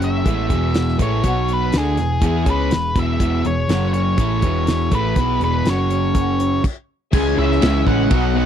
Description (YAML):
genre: classic rock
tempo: 122 BPM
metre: 4/4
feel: straight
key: E major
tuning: A4 = 441 Hz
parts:
  - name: octave-fuzz lead guitar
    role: melody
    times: 0.0-8.5 s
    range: G#4 to G#5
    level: -24 LUFS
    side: left 2 dB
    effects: distortion
  - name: picked steel-string acoustic guitar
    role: accompaniment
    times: 0.0-8.5 s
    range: E2 to C#5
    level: -29 LUFS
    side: left 4 dB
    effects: none
  - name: crunchy overdriven guitar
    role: riff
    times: 0.0-8.5 s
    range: E2 to E4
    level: -23 LUFS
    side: right 14 dB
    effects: none
  - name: overdriven semi-hollow guitar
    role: riff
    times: 0.0-8.5 s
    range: E2 to E4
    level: -24 LUFS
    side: left 14 dB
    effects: none
  - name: hollow-body short-scale picked electric bass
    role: bass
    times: 0.0-8.5 s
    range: E1 to E2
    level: -22 LUFS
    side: equal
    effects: none
  - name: damped 70s drum kit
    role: drums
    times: 0.0-8.2 s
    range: crash cymbal, hi-hat, kick drum, ride cymbal, snare drum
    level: -20 LUFS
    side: equal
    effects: none
  - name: bright tonewheel organ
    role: sustained chords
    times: 7.1-8.5 s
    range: D#4 to E5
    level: -32 LUFS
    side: equal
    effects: none
  - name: cranked stack guitar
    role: riff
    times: 7.1-8.5 s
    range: B2 to D#4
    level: -24 LUFS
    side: right 1 dB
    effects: overdrive, harmonic tremolo
room: little or no reverb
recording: dry, close 1970s-style studio recording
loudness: -16 LUFS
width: side -9 dB against mid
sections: 0.0-7.1 A section; 7.1-8.5 B section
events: stop 6.6-7.1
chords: 0.3 E; 1.2 B5; 1.7 E; 3.7 F#5; 4.2 E; 5.7 F#5; 6.6 N.C.; 7.1 C#m